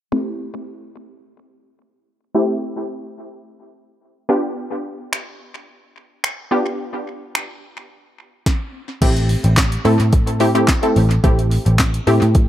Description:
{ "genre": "dance-pop", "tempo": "108 BPM", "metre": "4/4", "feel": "straight", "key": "A minor", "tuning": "A4 = 440 Hz", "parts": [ { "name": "wide unison pluck", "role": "accompaniment", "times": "0.1-12.4 s", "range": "A3 to A4", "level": "-20 LUFS", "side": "equal", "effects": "sidechain pumping, low-pass filter, tape echo" }, { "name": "smooth R&B drum kit", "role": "drums", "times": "5.1-12.5 s", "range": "crash cymbal, finger snaps, handclaps, hi-hat, kick drum, snare drum", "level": "-18 LUFS", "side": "equal", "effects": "overdrive, tape echo" }, { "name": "vintage muted picked electric bass", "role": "bass", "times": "9.0-12.5 s", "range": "A1 to A2", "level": "-16 LUFS", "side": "equal", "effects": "sidechain pumping" } ], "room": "light reverb", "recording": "echo-heavy mix", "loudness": "-16 LUFS", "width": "side -12 dB against mid", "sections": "0.1-9.0 A section; 9.0-12.5 B section", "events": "filter sweep on synth pluck 0.1-9.0", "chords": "0.1 Am7; 4.3 G7; 9.0 Am7" }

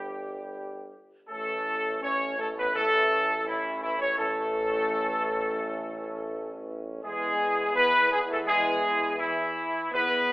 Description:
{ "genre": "classical, ceremonial fanfare", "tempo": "83 BPM", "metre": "4/4", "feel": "straight", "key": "unclear", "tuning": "A4 = 440 Hz", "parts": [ { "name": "warm trumpet section", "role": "melody", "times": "0.0-10.3 s", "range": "E4 to C#5", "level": "-25 LUFS", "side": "equal", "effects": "none" }, { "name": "mellow French horn section", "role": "sustained chords", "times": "0.0-10.3 s", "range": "E3 to C#4", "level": "-35 LUFS", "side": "left 1 dB", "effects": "none" }, { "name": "warm trombone section", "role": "sustained chords", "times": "0.0-10.3 s", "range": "E3 to C#4", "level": "-38 LUFS", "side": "equal", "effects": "none" }, { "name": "mellow tuba", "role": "bass", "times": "0.0-10.3 s", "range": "G1 to E2", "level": "-37 LUFS", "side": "right 1 dB", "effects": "none" } ], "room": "wet recital hall reverb, RT60 1.5 s", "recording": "telephone sound", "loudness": "-24 LUFS", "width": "side -20 dB against mid", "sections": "0.0-10.3 A section", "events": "none", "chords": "0.0 N.C.; 1.3 A; 7.0 E" }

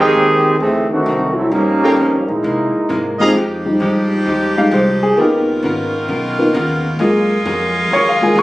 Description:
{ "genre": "jazz", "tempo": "132 BPM", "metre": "4/4", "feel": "swing 66% on 8ths", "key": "F minor", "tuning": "A4 = 440 Hz", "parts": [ { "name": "clear trombone section", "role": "second line", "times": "0.0-3.2 s", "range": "Eb3 to Ab4", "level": "-14 LUFS", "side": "right 1 dB", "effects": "none" }, { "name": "hollow-body jazz guitar", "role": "accompaniment", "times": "0.0-8.4 s", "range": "G2 to Bb4", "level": "-23 LUFS", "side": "left 1 dB", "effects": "none" }, { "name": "warm baby grand piano", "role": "accompaniment", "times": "0.0-8.4 s", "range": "Eb3 to Db6", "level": "-15 LUFS", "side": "left 1 dB", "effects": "none" }, { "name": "clear trumpet section", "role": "stabs", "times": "0.0-3.3 s", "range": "Ab4 to Bb5", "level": "-19 LUFS", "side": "right 1 dB", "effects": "none" }, { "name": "upright bass", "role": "bass", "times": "0.0-8.4 s", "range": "Ab1 to C3", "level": "-23 LUFS", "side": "equal", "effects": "none" }, { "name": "bright saxophone section", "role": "sustained chords", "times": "3.3-8.4 s", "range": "Cb3 to Bb4", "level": "-19 LUFS", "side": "right 1 dB", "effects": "none" } ], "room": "moderate large studio reverb, RT60 0.8 s", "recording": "recorded on a phone in the room, studio ambience", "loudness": "-13 LUFS", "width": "side -17 dB against mid", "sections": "0.0-3.4 A section; 3.4-8.4 B section", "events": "trombone section solo 0.0-3.4; grand piano solo 3.4-8.4", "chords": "0.0 Fm9; 0.6 D7b9; 1.5 Gm7b5; 2.4 C7alt; 3.4 Fm9; 5.2 Db13; 7.0 Gbmaj9" }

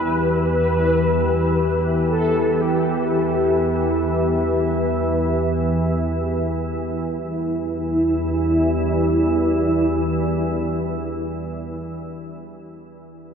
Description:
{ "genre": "dark ambient drone", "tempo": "free time", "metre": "none", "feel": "none", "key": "E minor", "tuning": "A4 = 437 Hz", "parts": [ { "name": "mellow horn-like synth lead", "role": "melody", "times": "0.0-11.8 s", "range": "E4 to B4", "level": "-23 LUFS", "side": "equal", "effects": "ensemble chorus, tape echo" }, { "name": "deep dark ambient pad", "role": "sustained chords", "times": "0.0-11.8 s", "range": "E4 to E5", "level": "-23 LUFS", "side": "left 1 dB", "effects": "chorus, built-in reverb" }, { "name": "organ-like drone", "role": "drone", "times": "0.0-11.8 s", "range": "E2 to E3", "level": "-23 LUFS", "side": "equal", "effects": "ensemble chorus, built-in reverb" } ], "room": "wet huge ambient reverb, RT60 8.2 s", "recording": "dreamy mix soaked in reverb", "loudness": "-18 LUFS", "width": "side -7 dB against mid", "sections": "0.0-6.8 A section; 6.8-11.1 B section", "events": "none", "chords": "0.0 Em" }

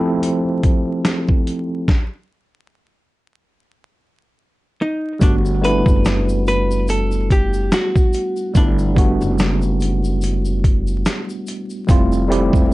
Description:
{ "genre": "lo-fi hip hop", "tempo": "72 BPM", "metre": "4/4", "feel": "swing 57% on 16ths", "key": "G major", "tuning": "A4 = 440 Hz", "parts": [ { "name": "tine electric piano", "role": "accompaniment", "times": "0.0-12.7 s", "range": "F3 to A4", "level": "-20 LUFS", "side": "right 1 dB", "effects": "fast stereo tremolo, low-pass filter" }, { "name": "dusty soul sampler-style drum kit", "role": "drums", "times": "0.2-12.7 s", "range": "hi-hat, kick drum, snare drum", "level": "-16 LUFS", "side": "equal", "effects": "none" }, { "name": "hollow-body jazz guitar", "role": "melody", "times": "4.8-10.2 s", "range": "D4 to B4", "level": "-22 LUFS", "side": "equal", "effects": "low-pass filter" }, { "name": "upright bass", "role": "bass", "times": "5.2-12.7 s", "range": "E1 to G1", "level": "-20 LUFS", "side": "equal", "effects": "none" }, { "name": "tube shaker", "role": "percussion", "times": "5.2-12.7 s", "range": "none", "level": "-41 LUFS", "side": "left 6 dB", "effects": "none" } ], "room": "light reverb", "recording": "dark, warm production, vinyl crackle, nothing above 10.9 kHz", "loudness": "-15 LUFS", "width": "side -18 dB against mid", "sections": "0.0-5.2 A section; 5.2-12.7 B section", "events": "filter sweep 0.0-5.2; stop 1.9-5.2", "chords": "0.0 Fmaj9; 1.9 N.C.; 5.2 Gmaj9; 11.9 Fmaj9" }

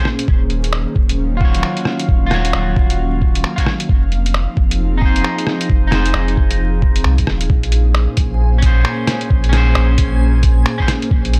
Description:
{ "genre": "future garage", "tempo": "133 BPM", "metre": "4/4", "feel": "swing 62% on 16ths", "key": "Bb minor", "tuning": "A4 = 440 Hz", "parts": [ { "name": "electric guitar at the edge of break-up", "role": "accompaniment", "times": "0.0-10.9 s", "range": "Db4 to Db5", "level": "-26 LUFS", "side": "equal", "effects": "sidechain pumping, tape echo" }, { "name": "airy breathy pad", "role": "sustained chords", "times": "0.0-11.4 s", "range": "Bb2 to F5", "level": "-25 LUFS", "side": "equal", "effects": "chorus, sidechain pumping" }, { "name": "lo-fi sampler-style drum kit", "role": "drums", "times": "0.1-11.4 s", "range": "finger snaps, hi-hat, rim click", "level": "-23 LUFS", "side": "equal", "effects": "overdrive, studio reverb" }, { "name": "soft dub sub bass", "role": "bass", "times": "0.3-11.4 s", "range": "Eb1 to C2", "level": "-18 LUFS", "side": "equal", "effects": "sidechain pumping" }, { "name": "electronic kick drum", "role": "drums", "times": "0.3-11.2 s", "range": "none", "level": "-18 LUFS", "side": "equal", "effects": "overdrive, studio reverb" }, { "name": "backwards swelling texture", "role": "texture", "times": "8.2-11.4 s", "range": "Ab5", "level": "-36 LUFS", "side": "equal", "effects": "built-in reverb" } ], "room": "little or no reverb", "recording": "dry, gritty hardware recording, vinyl crackle", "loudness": "-15 LUFS", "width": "mono", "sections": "0.0-7.5 A section; 7.5-11.4 B section", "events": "none", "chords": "0.3 Ebm9; 3.9 Fm7; 7.5 Bbm9" }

